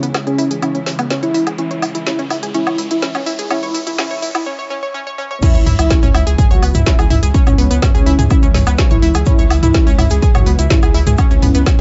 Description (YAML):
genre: melodic techno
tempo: 125 BPM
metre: 4/4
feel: straight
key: C# minor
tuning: A4 = 439 Hz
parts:
  - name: unison lead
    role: melody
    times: 0.0-11.6 s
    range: C#4 to F#4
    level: -22 LUFS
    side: equal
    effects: cassette tape
  - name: evolving wavetable pad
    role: sustained chords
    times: 0.0-11.8 s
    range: C#3 to E4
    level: -30 LUFS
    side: equal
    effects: ensemble chorus, built-in reverb, phaser, sidechain pumping
  - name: analog pluck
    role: arpeggios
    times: 0.0-11.8 s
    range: B3 to C#5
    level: -24 LUFS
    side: equal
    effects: chorus, sidechain pumping, tape echo
  - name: round analog bass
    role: bass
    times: 0.0-11.6 s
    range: B1 to C#2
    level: -19 LUFS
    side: equal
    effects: sidechain pumping, high-pass filter
  - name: bowed-like drone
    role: drone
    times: 0.0-4.5 s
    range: C#3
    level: -35 LUFS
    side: equal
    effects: none
  - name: deep house drum kit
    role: drums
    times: 0.0-11.8 s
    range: crash cymbal, hi-hat, snare drum, toms, woodblock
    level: -22 LUFS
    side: equal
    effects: high-pass filter on hats, high-pass filter on toms, high-pass filter on perc, high-pass filter on snare, high-pass filter on cymbals
  - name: riser and sub drop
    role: sound effects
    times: 1.2-7.3 s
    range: none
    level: -31 LUFS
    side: equal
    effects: none
  - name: electronic kick drum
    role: drums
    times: 5.4-11.8 s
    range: none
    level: -15 LUFS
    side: equal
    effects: none
  - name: egg shaker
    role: percussion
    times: 5.4-11.8 s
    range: none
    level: -36 LUFS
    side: equal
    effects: none
room: little or no reverb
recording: dry, gritty hardware recording, high-pass filter, nothing above 7.8 kHz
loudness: -14 LUFS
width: mono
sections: 0.0-5.4 A section; 5.4-11.8 B section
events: build-up 0.0-5.4; riser 1.2-4.5; filter sweep on synth pluck 0.0-5.4; filter sweep 0.0-5.4; break 4.5-5.4; drum fill 5.2; drop 5.4-11.8; impact 5.4-7.3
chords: 0.0 C#m